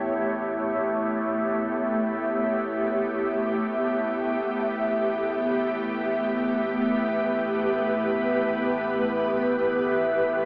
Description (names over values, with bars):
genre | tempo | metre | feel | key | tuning
ambient | free time | none | none | A mixolydian | A4 = 441 Hz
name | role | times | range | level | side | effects
ethereal airy pad | sustained chords | 0.0-10.5 s | A2 to C#5 | -24 LUFS | equal | ensemble chorus, built-in reverb, phaser
warm sub bass | bass | 0.0-10.5 s | A1 | -48 LUFS | equal | none
glass harmonica | texture | 0.0-10.5 s | E4 to E5 | -27 LUFS | equal | none
room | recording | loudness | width
wet huge ambient reverb, RT60 8.4 s | in a vast, echoing space, AM radio sound | -23 LUFS | side -28 dB against mid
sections
0.0-10.5 A section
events
none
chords
0.0 A9